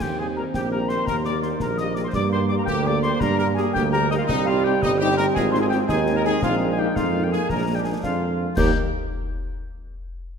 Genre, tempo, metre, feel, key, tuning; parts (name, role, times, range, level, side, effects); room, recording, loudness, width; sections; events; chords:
military-style march for wind band; 112 BPM (dotted quarters); 6/8; straight; Eb major; A4 = 440 Hz
dark trumpet section; melody; 0.0-8.7 s; Eb4 to Eb5; -28 LUFS; left 1 dB
warm euphonium; second line; 0.0-8.2 s; Bb3 to G4; -27 LUFS; right 4 dB
wooden piccolo; second line; 0.0-8.8 s; Eb5 to G6; -29 LUFS; left 5 dB
clear trombone section; sustained chords; 0.0-8.7 s; Eb3 to Eb4; -29 LUFS; right 1 dB
warm tuba; bass; 0.0-8.7 s; G1 to G2; -24 LUFS; right 2 dB
concert snare drum, clash cymbals and concert bass drum; drums; 0.0-8.8 s; -31 LUFS; left 2 dB
mellow French horn section; accompaniment; 0.2-8.7 s; G3 to G4; -31 LUFS; left 5 dB
wet scoring stage reverb, RT60 1.9 s; -19 LUFS; side -6 dB against mid
0.0-8.6 A section; 8.6-9.6 B section
0.0 Eb; 2.1 Gm; 4.3 Cm; 5.4 Ab; 6.4 Bb7sus4; 7.5 Bb7; 8.6 Eb